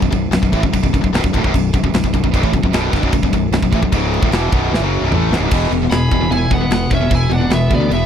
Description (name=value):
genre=heavy metal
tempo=151 BPM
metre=4/4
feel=straight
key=B minor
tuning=A4 = 442 Hz
part: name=tight distorted guitar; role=riff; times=0.0-8.1 s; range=B1 to A3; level=-20 LUFS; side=left 13 dB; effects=distortion
part: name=tight distorted guitar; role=riff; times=0.0-8.1 s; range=B1 to A3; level=-20 LUFS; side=right 12 dB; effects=distortion
part: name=fuzz fingered electric bass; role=bass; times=0.0-8.1 s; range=B0 to D2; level=-19 LUFS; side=equal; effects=overdrive
part: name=tight metal drum kit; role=drums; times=0.0-8.0 s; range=crash cymbal, kick drum, snare drum, toms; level=-19 LUFS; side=equal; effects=none
part: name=bluesy overdriven lead guitar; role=melody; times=5.9-8.1 s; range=D5 to B5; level=-21 LUFS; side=right 1 dB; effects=distortion, slapback echo
part: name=high-gain lead guitar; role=second line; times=5.9-8.1 s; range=B3 to G#4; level=-26 LUFS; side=right 4 dB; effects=distortion
room=little or no reverb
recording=dry, close 1970s-style studio recording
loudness=-13 LUFS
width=side -8 dB against mid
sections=0.0-5.5 A section; 5.5-8.1 B section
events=drum fill 4.7-5.5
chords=0.0 Bm; 5.5 E